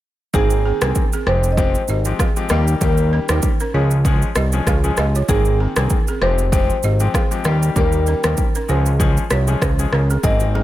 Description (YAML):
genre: afrobeats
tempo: 97 BPM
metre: 4/4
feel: swing 55% on 16ths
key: Ab major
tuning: A4 = 440 Hz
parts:
  - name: marimba with medium mallets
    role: melody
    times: 0.3-10.6 s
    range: Ab4 to Eb5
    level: -24 LUFS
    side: equal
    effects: tape echo
  - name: clear concert grand piano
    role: accompaniment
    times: 0.3-10.6 s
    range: Eb3 to Ab4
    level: -24 LUFS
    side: left 4 dB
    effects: none
  - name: fat analog bass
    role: bass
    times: 0.3-10.6 s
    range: F1 to Eb2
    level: -17 LUFS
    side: equal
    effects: none
  - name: deep house drum kit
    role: drums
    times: 0.3-10.5 s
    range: kick drum, rim click, shaker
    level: -20 LUFS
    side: equal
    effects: none
  - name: balafon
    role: riff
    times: 0.7-10.6 s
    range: C4 to F5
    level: -28 LUFS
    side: right 5 dB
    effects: tape echo
  - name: congas and bongos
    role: percussion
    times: 10.2-10.6 s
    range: none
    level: -28 LUFS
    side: left 2 dB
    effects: none
room: studio reverb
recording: none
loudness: -15 LUFS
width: side -14 dB against mid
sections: 0.3-10.6 A section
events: none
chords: 0.3 Abadd9; 1.3 Fmadd9; 2.5 Eb; 3.7 Db; 5.3 Abadd9; 6.2 Fmadd9; 7.5 Eb; 8.7 Db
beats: | 0.34 0.96 1.57 2.19 | 2.81 3.43 4.05 4.67 | 5.29 5.91 6.52 7.14 | 7.76 8.38 9.00 9.62 | 10.23